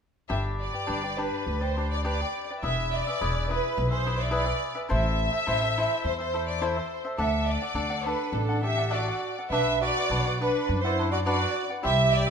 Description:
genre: mexican folk, mariachi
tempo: 104 BPM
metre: 4/4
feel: swing 53% on 8ths, rubato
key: G major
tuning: A4 = 440 Hz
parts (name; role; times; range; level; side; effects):
- warm symphonic violin section; melody; 0.3-12.3 s; A4 to E5; -28 LUFS; right 1 dB; none
- cavaquinho; accompaniment; 0.3-12.3 s; D4 to F#5; -31 LUFS; left 2 dB; none
- upright bass; bass; 0.3-12.2 s; E1 to F#2; -29 LUFS; left 1 dB; none
- mellow trumpet; second line; 8.3-12.3 s; D4 to B4; -32 LUFS; right 4 dB; none
room: moderate recital hall reverb, RT60 1.6 s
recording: minimal, uncompressed stereo recording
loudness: -24 LUFS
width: side -6 dB against mid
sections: 0.3-12.3 A section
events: none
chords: 0.3 G; 2.6 E; 4.9 Am; 7.2 D; 9.5 Bm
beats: | 0.30 0.88 1.47 2.05 | 2.63 3.20 3.77 4.33 | 4.90 5.47 6.04 6.61 | 7.18 7.75 8.32 8.90 | 9.50 10.09 10.68 11.26 | 11.84

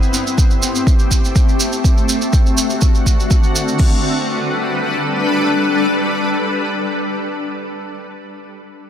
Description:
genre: progressive house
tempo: 123 BPM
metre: 4/4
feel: straight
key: G major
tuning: A4 = 440 Hz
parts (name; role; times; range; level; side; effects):
- shimmering ambient pad; sustained chords; 0.0-7.5 s; D3 to B4; -18 LUFS; left 1 dB; chorus, built-in reverb, sidechain pumping
- maracas; percussion; 0.0-3.8 s; none; -22 LUFS; right 4 dB; none
- house drum kit; drums; 0.1-3.9 s; crash cymbal, hi-hat; -29 LUFS; left 4 dB; sidechain pumping on hats, low-pass filter on hats, sidechain pumping on cymbals, low-pass filter on cymbals, low-pass filter on room
- electronic kick drum; drums; 0.4-3.9 s; none; -13 LUFS; equal; none
room: light reverb, digital ambience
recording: none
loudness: -14 LUFS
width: side -9 dB against mid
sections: 0.0-3.8 A section; 3.8-7.7 B section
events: none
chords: 0.0 Am7; 1.8 D7; 3.8 Gadd9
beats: 0.38 0.87 1.35 | 1.84 2.33 2.82 3.31 | 3.79 4.28 4.77 5.26 | 5.75 6.23 6.72 7.21

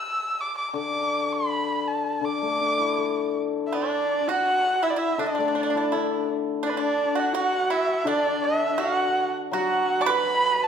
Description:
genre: chinese traditional, Chinese chamber ensemble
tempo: 82 BPM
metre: 2/4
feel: rubato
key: D gong mode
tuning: A4 = 440 Hz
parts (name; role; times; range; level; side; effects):
- dark erhu; melody; 0.0-10.7 s; B4 to E6; -25 LUFS; right 1 dB; none
- hammered dulcimer; accompaniment; 0.7-10.7 s; D3 to A4; -28 LUFS; left 6 dB; none
- pipa; second line; 3.7-10.7 s; D4 to D5; -29 LUFS; right 6 dB; none
- rich horsehead fiddle; second line; 3.7-10.7 s; D4 to B4; -28 LUFS; equal; none
room: wet recital hall reverb, RT60 1.6 s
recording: minimal, uncompressed stereo recording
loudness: -22 LUFS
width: side -7 dB against mid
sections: 0.0-3.7 A section; 3.7-10.7 B section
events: none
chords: none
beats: 0.02 | 0.75 1.49 | 2.23 2.98 | 3.73 4.46 | 5.19 5.92 | 6.63 7.34 | 8.06 8.79 | 9.53 10.26

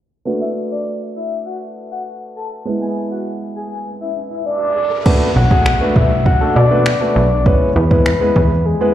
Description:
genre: dance-pop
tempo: 100 BPM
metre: 4/4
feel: straight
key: B dorian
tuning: A4 = 440 Hz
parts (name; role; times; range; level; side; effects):
- warm concert grand piano; accompaniment; 0.3-8.9 s; G#3 to B4; -20 LUFS; right 1 dB; sidechain pumping, slapback echo
- airy dreamy lead; melody; 0.4-4.9 s; D5 to A5; -23 LUFS; equal; chorus, slapback echo, digital delay
- riser and downlifter; sound effects; 3.7-8.9 s; none; -28 LUFS; equal; slapback echo
- smooth R&B drum kit; drums; 5.1-8.5 s; crash cymbal, finger snaps, kick drum; -15 LUFS; right 1 dB; overdrive
- soft octave-layered synth lead; melody; 5.4-8.9 s; G#4 to F#5; -18 LUFS; left 4 dB; chorus, slapback echo, digital delay
- plucky analog bass; bass; 5.4-8.8 s; B1 to B2; -14 LUFS; right 1 dB; sidechain pumping
room: little or no reverb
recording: live gig heard through the venue's PA, recital hall reverb, low-pass filter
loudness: -13 LUFS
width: side -12 dB against mid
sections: 0.3-5.1 A section; 5.1-8.9 B section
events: filter sweep 0.3-5.1; riser 3.7-5.1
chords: 0.3 Bm7; 2.7 E; 4.8 N.C.; 5.1 Bm7; 7.5 E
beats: | 0.26 0.86 1.46 2.06 | 2.66 3.26 3.86 4.46 | 5.06 5.66 6.26 6.86 | 7.46 8.06 8.66

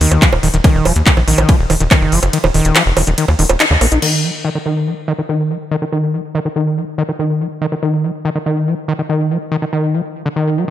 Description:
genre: psychedelic trance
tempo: 142 BPM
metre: 4/4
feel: straight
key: Eb minor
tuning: A4 = 440 Hz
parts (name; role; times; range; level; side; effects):
- overdriven acid bass; riff; 0.0-10.7 s; D3 to Eb4; -16 LUFS; equal; distortion, auto-pan, sidechain pumping, ping-pong delay
- tight sequencer bass; bass; 0.0-4.0 s; Eb1 to Eb2; -15 LUFS; equal; none
- techno drum kit; drums; 0.0-4.1 s; bongos, crash cymbal, handclaps, hi-hat, ride cymbal; -16 LUFS; right 1 dB; none
- electronic kick drum; drums; 0.2-2.0 s; none; -11 LUFS; equal; none
room: light reverb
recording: none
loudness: -13 LUFS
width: side -12 dB against mid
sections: 0.0-4.0 A section; 4.0-10.7 B section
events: drop 0.0-4.0; kick drops out 2.3-4.0; band accent 3.6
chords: 0.0 Eb5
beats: 0.22 | 0.64 1.06 1.49 1.91 | 2.33 2.75 3.18 3.60 | 4.02 4.45 4.87 5.29 | 5.71 6.14 6.56 6.98 | 7.40 7.83 8.25 8.67 | 9.09 9.52 9.94 10.36

